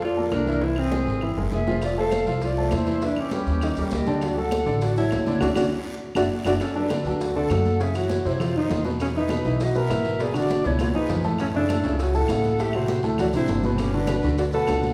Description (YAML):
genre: Afro-Cuban jazz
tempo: 201 BPM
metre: 4/4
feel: straight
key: B minor from 6.6 s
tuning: A4 = 440 Hz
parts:
  - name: breathy alto saxophone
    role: melody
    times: 0.0-14.9 s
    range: C4 to A#4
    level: -28 LUFS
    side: equal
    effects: none
  - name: breathy jazz flute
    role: second line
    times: 0.0-14.9 s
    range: G4 to F#5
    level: -34 LUFS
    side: equal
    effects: none
  - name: warm baby grand piano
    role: accompaniment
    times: 0.0-14.9 s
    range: A2 to F5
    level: -30 LUFS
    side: equal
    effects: none
  - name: upright bass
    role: bass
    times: 0.0-14.9 s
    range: F1 to F#2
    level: -30 LUFS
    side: equal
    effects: none
  - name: bongos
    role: percussion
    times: 0.0-14.8 s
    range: none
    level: -38 LUFS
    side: equal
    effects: none
  - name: congas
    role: percussion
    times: 0.0-14.9 s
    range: none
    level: -34 LUFS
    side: equal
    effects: none
  - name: guiro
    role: percussion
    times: 0.0-14.9 s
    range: none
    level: -48 LUFS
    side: equal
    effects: none
  - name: claves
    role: percussion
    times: 0.3-14.8 s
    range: none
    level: -46 LUFS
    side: equal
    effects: none
  - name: maracas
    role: percussion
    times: 1.8-14.9 s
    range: none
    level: -48 LUFS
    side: equal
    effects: none
room: wet recital hall reverb, RT60 1.8 s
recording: recorded in a church or concert hall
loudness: -23 LUFS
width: mono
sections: 0.0-6.6 A section; 6.6-14.9 B section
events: drum fill 1.2-1.8, 6.2-6.6, 10.8-11.4; band accent 5.4-6.6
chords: 0.0 Bbmaj7; 0.6 Caug7; 1.8 F6; 3.0 Em; 3.6 Eb7; 4.2 Dmaj9; 6.0 Dadd9/F#; 6.6 Bm7; 7.8 F#5; 8.4 F5; 9.0 Emaj7; 10.2 G#m7b5; 10.8 C#7; 11.4 F#m7; 12.6 Am; 13.2 D5; 13.8 Gmaj7